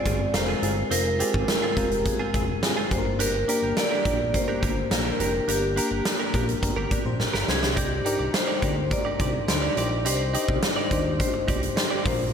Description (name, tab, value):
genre	1980s-style pop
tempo	105 BPM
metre	4/4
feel	straight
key	C minor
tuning	A4 = 440 Hz
part	vibraphone with medium hard mallets	melody	0.0-12.2 s	G4 to D5	-29 LUFS	equal	slapback echo
part	FM electric piano	accompaniment	0.0-12.3 s	Ab3 to Eb5	-30 LUFS	left 2 dB	chorus, slapback echo
part	direct-recorded clean electric guitar	riff	0.0-12.2 s	C4 to D5	-32 LUFS	right 4 dB	analog chorus, slapback echo
part	fat analog bass	bass	0.1-12.3 s	F1 to Eb2	-29 LUFS	equal	none
part	huge arena drum kit	drums	0.1-12.2 s	hi-hat, kick drum, snare drum	-26 LUFS	equal	none
room	wet lush hall reverb, RT60 2.0 s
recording	big arena sound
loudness	-22 LUFS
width	side -7 dB against mid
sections	0.0-12.3 A section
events	drum fill 7.2-7.8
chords	0.0 Fm; 2.9 Gm; 7.5 Cmadd9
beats	0.34 | 0.91 1.48 2.06 2.63 | 3.20 3.77 4.34 4.91 | 5.48 6.05 6.63 7.20 | 7.77 8.34 8.91 9.48 | 10.05 10.63 11.20 11.77